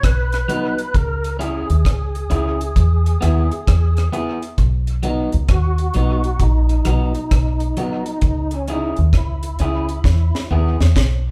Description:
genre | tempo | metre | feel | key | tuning
roots reggae | 66 BPM | 4/4 | swing 65% on 16ths | B major | A4 = 440 Hz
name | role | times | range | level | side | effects
tonewheel organ | melody | 0.0-10.5 s | C#4 to B4 | -28 LUFS | equal | overdrive, chorus vibrato, slow rotary speaker
deep dub fingered electric bass | bass | 0.0-11.3 s | A#1 to E2 | -20 LUFS | equal | none
deep reggae drum kit | drums | 0.0-11.2 s | hi-hat, kick drum, rim click, snare drum | -22 LUFS | equal | none
electric guitar at the edge of break-up | accompaniment | 0.5-10.8 s | F#3 to G#4 | -26 LUFS | equal | none
room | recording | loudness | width
light reverb | band playing live in one room | -18 LUFS | mono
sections
0.0-11.3 A section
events
drum fill 10.0-11.3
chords
0.0 B; 0.9 C#m; 2.8 E; 4.6 B; 8.2 C#m; 10.0 E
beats
0.03 | 0.94 1.85 2.76 3.67 | 4.58 5.49 6.40 7.32 | 8.22 9.13 10.05 10.96

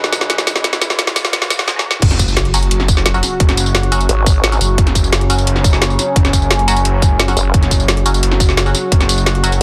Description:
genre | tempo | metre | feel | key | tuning
dark technical drum and bass | 174 BPM | 4/4 | straight | unclear | A4 = 440 Hz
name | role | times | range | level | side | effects
sweeping resonant pad | sustained chords | 0.0-9.6 s | C#3 to B4 | -24 LUFS | equal | chorus, phaser, sidechain pumping
drum and bass drum kit | drums | 0.0-9.6 s | crash cymbal, hi-hat, snare drum, tambourine | -19 LUFS | equal | none
riser and sub drop | sound effects | 0.0-3.4 s | none | -27 LUFS | equal | none
band-passed chord stab | stabs | 1.8-9.5 s | F#3 to F#4 | -26 LUFS | equal | phaser, dub echo
detuned saw bass | bass | 2.0-9.6 s | F#1 | -18 LUFS | equal | chorus, overdrive
electronic kick drum | drums | 2.0-9.0 s | none | -15 LUFS | equal | none
vowel-sweep wobble bass | bass | 4.1-4.6, 7.4-7.5 s | F#1 to G#1 | -17 LUFS | equal | chorus
room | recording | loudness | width
light reverb, digital ambience | dense, heavily limited modern master, high-pass filter | -14 LUFS | mono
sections
0.0-2.0 A section; 2.0-9.6 B section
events
build-up 0.0-2.0; drum fill 0.0-1.7, 1.7-2.0; riser 0.0-1.7; drop 2.0-9.6; impact 2.0-3.4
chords
0.0 N.C.; 2.0 F#5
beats
0.30 | 0.64 0.99 1.33 1.68 | 2.02 2.37 2.71 3.06 | 3.40 3.75 4.09 4.43 | 4.78 5.12 5.47 5.82 | 6.16 6.50 6.85 7.19 | 7.54 7.88 8.23 8.57 | 8.92 9.26 9.61

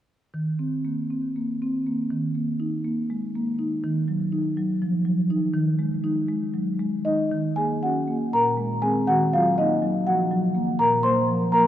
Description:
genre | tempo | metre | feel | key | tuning
classical, contemporary piece for solo marimba | 242 BPM (eighths) | 7/8 | rubato | Eb minor | A4 = 440 Hz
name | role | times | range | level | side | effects
marimba with soft mallets | solo | 0.3-11.7 s | Bb2 to C6 | -21 LUFS | equal | none
room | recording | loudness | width
wet cathedral reverb, RT60 4.5 s | dark, warm production | -22 LUFS | side -11 dB against mid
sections
0.3-7.3 A section; 7.3-11.7 B section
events
none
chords
0.3 Eb5; 2.1 Ebsus4; 3.8 Ebmadd9; 5.5 Ab5/Eb; 7.3 Ebm7; 8.3 Bbsus2; 9.1 Ebmadd9; 10.8 Bbsus2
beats
| 0.33 0.59 0.84 1.10 1.36 1.61 1.86 | 2.11 2.36 2.60 2.85 3.09 3.34 3.59 | 3.83 4.08 4.32 4.57 4.81 5.05 5.30 | 5.54 5.79 6.04 6.29 6.54 6.79 7.05 | 7.31 7.57 7.82 8.07 8.32 8.57 8.82 | 9.07 9.33 9.58 9.83 10.07 10.31 10.56 | 10.80 11.04 11.28 11.53

